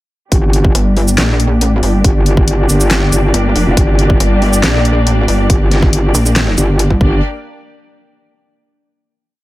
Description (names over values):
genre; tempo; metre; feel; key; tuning
heavy wobble dubstep; 139 BPM; 4/4; half-time; G minor; A4 = 440 Hz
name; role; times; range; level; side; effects
rich symphonic string section; sustained chords; 0.3-7.2 s; Bb3 to D5; -20 LUFS; left 1 dB; sidechain pumping, low-pass filter
metallic wobble bass; bass; 0.3-7.2 s; F1 to G1; -12 LUFS; equal; chorus, overdrive
dubstep drum kit; drums; 0.3-6.9 s; handclaps, hi-hat, shaker, snare drum; -17 LUFS; equal; none
electronic kick drum; drums; 0.3-7.1 s; none; -13 LUFS; equal; overdrive
pulsing pluck wobble bass; bass; 0.7-7.0 s; F1 to Bb1; -12 LUFS; equal; chorus, overdrive
room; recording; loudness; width
little or no reverb; none; -10 LUFS; side -17 dB against mid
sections
0.3-7.2 drop; 7.2-9.0 final hit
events
drop 0.3-7.2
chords
0.3 Gm; 7.2 N.C.